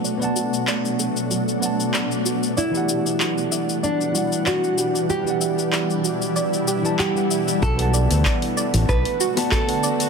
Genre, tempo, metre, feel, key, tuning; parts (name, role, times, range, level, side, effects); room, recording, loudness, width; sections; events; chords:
sunset chillout; 95 BPM; 4/4; swing 54% on 16ths; A4 = 439 Hz
tine electric piano; accompaniment; 0.0-10.1 s; E3 to A5; -26 LUFS; right 1 dB; auto-pan, tape echo
shimmering ambient pad; sustained chords; 0.0-10.1 s; B2 to F#5; -24 LUFS; equal; chorus, built-in reverb
soft round pluck; arpeggios; 0.0-10.1 s; F#4 to A5; -30 LUFS; right 7 dB; chorus, tape echo
deep house drum kit; drums; 0.0-10.1 s; cabasa, handclaps, hi-hat; -26 LUFS; left 3 dB
nylon-string guitar; melody; 2.6-10.1 s; D4 to B4; -25 LUFS; right 1 dB; tape echo
fingered electric bass; bass; 7.6-9.0 s; A1 to D2; -19 LUFS; equal
electronic kick drum; drums; 7.6-9.7 s; -24 LUFS; equal
bongos; percussion; 9.4-9.5 s; -25 LUFS; left 8 dB
moderate plate reverb, RT60 2.6 s; dense, heavily limited modern master; -19 LUFS; side -5 dB against mid
0.0-7.6 A section; 7.6-10.1 B section
filter sweep on ambient pad 0.0-7.6; filter sweep on synth arpeggio sound 0.0-7.6
0.0 Bm7; 2.6 Em9; 7.6 Bm7